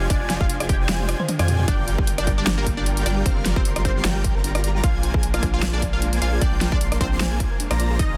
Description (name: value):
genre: future bass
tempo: 152 BPM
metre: 4/4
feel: swing 55% on 16ths, half-time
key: unclear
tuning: A4 = 440 Hz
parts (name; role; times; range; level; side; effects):
- unison pluck; melody; 0.0-8.2 s; Bb3 to G5; -33 LUFS; equal; phaser, sidechain pumping, tape echo
- clear symphonic string section; sustained chords; 0.0-8.2 s; F3 to Bb4; -39 LUFS; equal; none
- airy dreamy lead; arpeggios; 0.0-8.2 s; F5 to C6; -37 LUFS; equal; chorus, sidechain pumping
- thumb-piano-like synth pluck; arpeggios; 0.0-8.1 s; D4 to D5; -38 LUFS; equal; chorus, sidechain pumping, tape echo
- dense compressed supersaw; riff; 0.0-8.2 s; G3 to C6; -32 LUFS; equal; sidechain pumping
- saturated sub bass; bass; 0.0-8.2 s; F1 to F2; -26 LUFS; equal; tube saturation, sidechain pumping
- big-room dance drum kit; drums; 0.1-8.1 s; hi-hat, rim click, snare drum, toms; -28 LUFS; equal; overdrive
- electronic kick drum; drums; 0.1-8.1 s; none; -26 LUFS; equal; overdrive
room: little or no reverb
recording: dense, heavily limited modern master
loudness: -21 LUFS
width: mono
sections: 0.0-8.2 A section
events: kick drops out 0.9-1.7; drum fill 0.9-1.7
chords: 0.0 Fm69; 1.7 Gm7; 4.8 Bb7